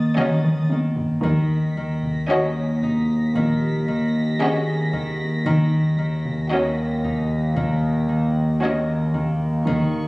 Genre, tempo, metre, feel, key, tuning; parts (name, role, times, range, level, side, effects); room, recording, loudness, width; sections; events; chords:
cinematic, suspense film score; 57 BPM; 4/4; straight; Eb minor; A4 = 440 Hz
Celtic harp; riff; 0.0-10.1 s; Eb3 to Eb4; -26 LUFS; left 1 dB
analog drone; drone; 0.0-10.1 s; Eb2; -22 LUFS; equal; chorus
dark studio violin section; texture; 0.0-10.1 s; Db6 to Cb7; -36 LUFS; equal
felt-muted upright piano; texture; 0.0-10.1 s; Ab4 to Db6; -32 LUFS; equal
rich studio violin section; melody; 0.2-9.4 s; Eb5; -29 LUFS; left 1 dB
warm studio violin section; second line; 0.2-9.4 s; Gb4; -28 LUFS; equal
warm studio viola section; accompaniment; 0.2-9.4 s; Db4; -26 LUFS; equal
taiko ensemble; drums; 0.2-10.1 s; -29 LUFS; equal
dark studio cello section; bass; 1.2-10.1 s; Bb2 to Eb3; -23 LUFS; equal
dark studio double bass section; bass; 1.2-10.1 s; Bb1 to Eb2; -30 LUFS; right 1 dB
moderate concert hall reverb, RT60 2.1 s; recorded on a phone in the room, club reverb, compression; -19 LUFS; side -22 dB against mid
0.0-10.1 A section
drum fill 0.2-1.2
0.0 Ebm7